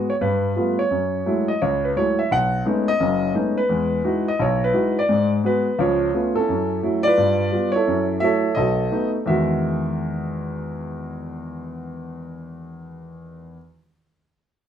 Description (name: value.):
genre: jazz.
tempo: 172 BPM.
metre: 4/4.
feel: swing 62% on 8ths.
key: E major.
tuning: A4 = 443 Hz.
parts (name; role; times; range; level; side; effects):
warm grand piano; solo; 0.0-13.6 s; F#1 to F#5; -19 LUFS; equal; none.
room: wet studio reverb, RT60 0.5 s.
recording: band playing live in one room.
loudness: -18 LUFS.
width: side -9 dB against mid.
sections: 0.0-6.5 A section; 6.5-9.3 B section; 9.3-12.1 C section.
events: none.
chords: 0.2 G9; 0.9 F#m9; 2.3 B13; 3.7 Emaj9; 5.1 G#m7b5; 5.8 C#7alt; 6.5 F#m7; 7.2 G7; 7.9 F#m7; 8.6 B7; 9.3 Emaj9.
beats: 0.21 0.56 | 0.91 1.26 1.61 1.96 | 2.31 2.65 3.00 3.35 | 3.70 4.05 4.39 4.74 | 5.09 5.44 5.79 6.13 | 6.48 6.83 7.18 7.53 | 7.87 8.22 8.57 8.92 | 9.27 9.61 9.96 10.31 | 10.66 11.01 11.36 11.70.